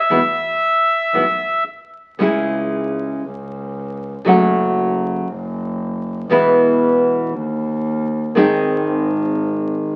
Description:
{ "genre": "tango", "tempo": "117 BPM", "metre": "4/4", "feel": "rubato", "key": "C# minor", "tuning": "A4 = 439 Hz", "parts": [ { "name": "bandoneon", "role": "melody", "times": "0.0-1.6 s", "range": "E5", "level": "-18 LUFS", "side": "equal", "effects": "none" }, { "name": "nylon-string guitar", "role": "accompaniment", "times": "0.1-10.0 s", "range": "B2 to G#4", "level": "-18 LUFS", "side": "equal", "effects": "none" }, { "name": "clear double bass", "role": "bass", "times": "0.1-10.0 s", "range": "F#1 to E2", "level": "-27 LUFS", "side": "equal", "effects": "none" } ], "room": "moderate large studio reverb, RT60 1.2 s", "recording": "very old 78 rpm record, vinyl crackle", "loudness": "-18 LUFS", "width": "mono", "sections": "0.0-2.2 A section; 2.2-10.0 B section", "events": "none", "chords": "0.1 E; 2.2 C#m; 3.2 N.C.; 4.3 F#m; 5.3 N.C.; 6.3 E; 7.3 N.C.; 8.4 G#", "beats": "| 0.10 0.62 1.14 1.67 | 2.19 2.71 3.23 3.75 | 4.26 4.78 5.29 5.79 | 6.30 6.82 7.33 7.84 | 8.36 8.87 9.39 9.91" }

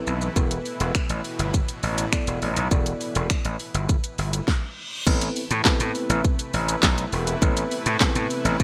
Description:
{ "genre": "dance-pop", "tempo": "102 BPM", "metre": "4/4", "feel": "straight", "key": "A minor", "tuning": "A4 = 440 Hz", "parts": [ { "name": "tine electric piano", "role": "accompaniment", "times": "0.0-8.6 s", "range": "B3 to D5", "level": "-32 LUFS", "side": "equal", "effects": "sidechain pumping" }, { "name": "supersaw pad", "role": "sustained chords", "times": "0.0-8.6 s", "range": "A2 to B4", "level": "-35 LUFS", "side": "equal", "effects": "sidechain pumping" }, { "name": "gritty slap bass", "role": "bass", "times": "0.1-8.6 s", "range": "E1 to A2", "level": "-27 LUFS", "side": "equal", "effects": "overdrive, sidechain pumping" }, { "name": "pop drum kit", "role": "drums", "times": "0.1-8.6 s", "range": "crash cymbal, finger snaps, handclaps, hi-hat, kick drum, shaker, snare drum", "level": "-25 LUFS", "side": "equal", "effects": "gated reverb" }, { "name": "reverse cymbal", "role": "sound effects", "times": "4.6-5.1 s", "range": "none", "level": "-38 LUFS", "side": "equal", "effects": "none" }, { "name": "group handclap", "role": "percussion", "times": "5.7-8.1 s", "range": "none", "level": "barely audible", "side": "none", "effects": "none" } ], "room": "light reverb, digital ambience", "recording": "bright 1980s-style digital production", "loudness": "-24 LUFS", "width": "mono", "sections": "0.0-5.1 A section; 5.1-8.6 B section", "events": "reverse cymbal 4.6-5.1", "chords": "0.4 Esus4; 4.8 N.C.; 5.1 Amadd9", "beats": "| 0.36 0.95 1.54 2.13 | 2.71 3.30 3.89 4.48 | 5.07 5.66 6.24 6.83 | 7.42 8.01 8.60" }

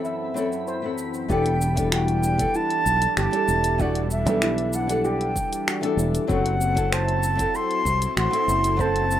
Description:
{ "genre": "sunset chillout", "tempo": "96 BPM", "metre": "4/4", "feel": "straight", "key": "E minor", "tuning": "A4 = 439 Hz", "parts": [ { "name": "concert flute", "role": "melody", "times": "0.0-9.2 s", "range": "D5 to C6", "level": "-25 LUFS", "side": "right 1 dB", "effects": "digital delay" }, { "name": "flamenco guitar", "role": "accompaniment", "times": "0.0-9.1 s", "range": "E3 to A5", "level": "-27 LUFS", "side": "moving between left 4 dB and right 4 dB", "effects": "auto-pan, digital delay" }, { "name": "lush unison pad", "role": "sustained chords", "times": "0.0-9.2 s", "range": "F#2 to A4", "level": "-30 LUFS", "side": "equal", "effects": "chorus" }, { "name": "deep house drum kit", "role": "drums", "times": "0.0-9.2 s", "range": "cabasa, finger snaps, hi-hat", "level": "-29 LUFS", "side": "equal", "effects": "none" }, { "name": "twinkling granular texture", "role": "texture", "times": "0.0-1.3 s", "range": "B5", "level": "-41 LUFS", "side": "left 2 dB", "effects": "built-in reverb" }, { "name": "steel pan", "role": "arpeggios", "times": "0.1-9.1 s", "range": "E4 to E5", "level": "-33 LUFS", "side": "equal", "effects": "digital delay" }, { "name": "fingered electric bass", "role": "bass", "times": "1.3-9.2 s", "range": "E1 to C2", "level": "-25 LUFS", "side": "equal", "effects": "none" }, { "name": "electronic kick drum", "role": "drums", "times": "1.3-8.9 s", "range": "none", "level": "-30 LUFS", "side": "equal", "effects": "none" } ], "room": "wet studio reverb, RT60 0.5 s", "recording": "rough home demo mix", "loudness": "-20 LUFS", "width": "side -11 dB against mid", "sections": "0.0-1.3 A section; 1.3-9.2 B section", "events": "none", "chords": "0.0 F#m7b5; 1.3 Em11; 6.3 F#m7b5", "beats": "0.05 0.67 | 1.30 1.92 2.55 3.17 | 3.80 4.42 5.05 5.67 | 6.30 6.92 7.55 8.17 | 8.80" }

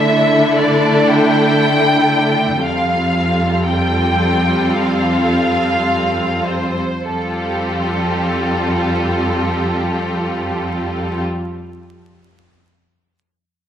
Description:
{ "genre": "cinematic, emotional film score for orchestra", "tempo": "free time", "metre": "none", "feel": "none", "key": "F major", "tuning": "A4 = 440 Hz", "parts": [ { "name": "rich studio violin section", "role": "melody", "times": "0.0-11.2 s", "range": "A4 to G5", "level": "-19 LUFS", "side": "left 1 dB", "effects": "none" }, { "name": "rich studio violin section", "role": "second line", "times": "0.0-11.2 s", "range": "E4 to A4", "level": "-21 LUFS", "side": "left 1 dB", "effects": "none" }, { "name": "rich studio viola section", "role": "accompaniment", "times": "0.0-11.2 s", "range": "G3 to D4", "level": "-20 LUFS", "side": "right 1 dB", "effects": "none" }, { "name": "dark studio cello section", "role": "bass", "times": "0.0-11.2 s", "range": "F2 to D3", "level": "-20 LUFS", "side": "equal", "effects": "none" } ], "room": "wet scoring stage reverb, RT60 1.6 s", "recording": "minimal, uncompressed stereo recording, vinyl crackle", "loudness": "-14 LUFS", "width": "side -9 dB against mid", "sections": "0.0-7.1 A section; 7.1-11.8 B section", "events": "slowing down 0.0-7.1", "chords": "0.0 Dsus2; 2.6 Fadd9", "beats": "free time" }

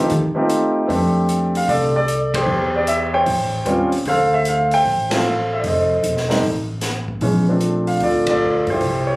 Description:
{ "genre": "jazz piano trio", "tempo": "151 BPM", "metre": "4/4", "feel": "swing 66% on 8ths", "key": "F major", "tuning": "A4 = 443 Hz", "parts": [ { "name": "warm grand piano", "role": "melody", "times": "0.0-9.2 s", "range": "E3 to G5", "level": "-17 LUFS", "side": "equal", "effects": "none" }, { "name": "upright bass", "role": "bass", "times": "0.0-9.2 s", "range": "E1 to Eb3", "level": "-22 LUFS", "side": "equal", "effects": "none" }, { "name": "open jazz drum kit", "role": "drums", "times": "0.1-8.9 s", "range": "hi-hat, kick drum, ride cymbal, snare drum", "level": "-27 LUFS", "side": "equal", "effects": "none" } ], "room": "little or no reverb", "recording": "recorded on a phone in the room, club reverb, compression", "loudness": "-16 LUFS", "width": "side -22 dB against mid", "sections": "0.9-9.2 A section", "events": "band accent 2.3, 5.0, 8.2", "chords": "0.1 F7; 0.9 F6; 2.5 Em; 3.3 A7alt; 4.0 Dm9; 5.6 F7; 7.2 Bbmaj9", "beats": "0.10 0.49 | 0.89 1.28 1.68 2.07 | 2.47 2.86 3.26 3.65 | 4.05 4.45 4.84 5.24 | 5.63 6.03 6.43 6.83 | 7.22 7.62 8.02 8.41 | 8.81" }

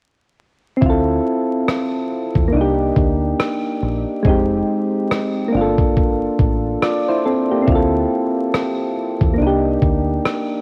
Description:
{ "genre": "lo-fi hip hop", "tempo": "70 BPM", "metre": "4/4", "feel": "swing 60% on 16ths", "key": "D phrygian", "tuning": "A4 = 440 Hz", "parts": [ { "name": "soft electric-piano-like synth keys", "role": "accompaniment", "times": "0.8-10.6 s", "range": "Ab3 to D5", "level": "-20 LUFS", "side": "equal", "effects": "chorus, cassette tape, low-pass filter" }, { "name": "deep dub fingered electric bass", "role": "bass", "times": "0.8-10.2 s", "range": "F1 to E2", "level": "-25 LUFS", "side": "equal", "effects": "none" }, { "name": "dusty soul sampler-style drum kit", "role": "drums", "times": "0.8-10.5 s", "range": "kick drum, rim click", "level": "-21 LUFS", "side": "equal", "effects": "cassette tape" } ], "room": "light reverb, digital ambience", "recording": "home recording on cassette, vinyl crackle", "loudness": "-18 LUFS", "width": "mono", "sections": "0.8-10.6 A section", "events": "hi-hats muted 0.8-10.6", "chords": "0.8 Dm9; 2.5 Cm9; 4.2 Fm9; 5.5 Gm9; 7.7 Dm9; 9.4 Cm9", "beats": "| 0.82 1.68 2.53 3.39 | 4.25 5.10 5.96 6.82 | 7.67 8.53 9.39 10.25" }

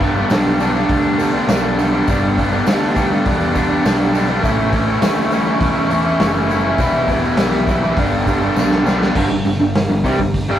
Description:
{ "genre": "garage rock duo or trio", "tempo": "102 BPM", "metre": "4/4", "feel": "straight", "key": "G lydian", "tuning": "A4 = 440 Hz", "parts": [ { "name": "raw garage guitar", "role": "riff", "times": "0.0-10.6 s", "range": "G2 to E4", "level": "-16 LUFS", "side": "equal", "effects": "overdrive" }, { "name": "growling picked electric bass", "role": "bass", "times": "0.0-10.6 s", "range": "E1 to E2", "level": "-23 LUFS", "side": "equal", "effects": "overdrive" }, { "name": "raw garage drum kit", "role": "drums", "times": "0.0-10.5 s", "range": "crash cymbal, hi-hat, kick drum, snare drum", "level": "-20 LUFS", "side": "equal", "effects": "none" }, { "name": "tambourine", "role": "percussion", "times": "0.2-9.1 s", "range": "none", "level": "-40 LUFS", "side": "right 4 dB", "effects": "none" } ], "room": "moderate studio ambience, RT60 0.5 s", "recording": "rough rehearsal-room recording", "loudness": "-14 LUFS", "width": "side -11 dB against mid", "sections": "0.0-9.2 A section; 9.2-10.6 B section", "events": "drum fill 8.6-9.2", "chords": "0.0 G; 4.4 A; 6.8 Em; 8.0 G; 9.2 G5", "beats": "0.31 0.90 1.49 | 2.08 2.67 3.26 3.85 | 4.44 5.03 5.62 6.21 | 6.80 7.39 7.98 8.57 | 9.16 9.76 10.35" }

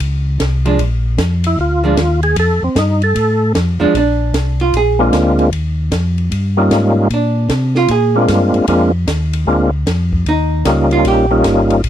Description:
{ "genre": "soul jazz organ trio", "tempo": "152 BPM", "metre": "4/4", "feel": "swing 65% on 8ths", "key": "Bb mixolydian", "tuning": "A4 = 438 Hz", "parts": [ { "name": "mellow tonewheel organ", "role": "bass", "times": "0.0-11.9 s", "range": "G1 to C3", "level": "-15 LUFS", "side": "equal", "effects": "slow rotary speaker" }, { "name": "open jazz drum kit", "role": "drums", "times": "0.0-11.9 s", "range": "hi-hat, kick drum, ride cymbal, snare drum", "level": "-23 LUFS", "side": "equal", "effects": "none" }, { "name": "archtop guitar, miked and amplified", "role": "accompaniment", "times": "0.7-11.7 s", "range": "F3 to Ab4", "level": "-16 LUFS", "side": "right 4 dB", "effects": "none" }, { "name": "overdriven tonewheel organ", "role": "melody", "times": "1.5-11.8 s", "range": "G3 to A4", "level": "-13 LUFS", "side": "equal", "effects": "slow rotary speaker, chorus vibrato" } ], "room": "little or no reverb", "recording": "dry, close 1970s-style studio recording", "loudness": "-12 LUFS", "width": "side -10 dB against mid", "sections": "0.0-3.9 A section; 3.9-11.9 A section", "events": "tonewheel organ solo 0.0-3.9; hollow-body jazz guitar solo 3.9-11.9", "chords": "0.0 N.C.; 0.8 Bb; 2.4 F; 3.9 Bb7; 5.5 Eb7; 7.1 Bb7; 10.3 Eb7", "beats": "0.00 0.40 | 0.79 1.19 1.58 1.97 | 2.37 2.76 3.16 3.55 | 3.95 4.34 4.74 5.13 | 5.53 5.92 6.32 6.71 | 7.11 7.50 7.89 8.29 | 8.68 9.08 9.47 9.87 | 10.26 10.66 11.05 11.45 | 11.84" }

